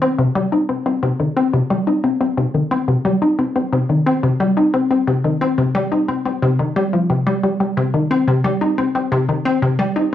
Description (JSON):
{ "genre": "ambient", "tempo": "89 BPM", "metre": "4/4", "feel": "straight", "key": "C minor", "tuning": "A4 = 441 Hz", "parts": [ { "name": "resonant blip pluck", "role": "solo", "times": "0.0-10.1 s", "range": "C3 to Eb4", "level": "-15 LUFS", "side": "left 1 dB", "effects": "chorus, cassette tape, tape echo" } ], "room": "wet studio reverb, RT60 0.6 s", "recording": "home recording on cassette", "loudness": "-15 LUFS", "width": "side -11 dB against mid", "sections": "0.0-10.1 A section", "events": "none", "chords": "none" }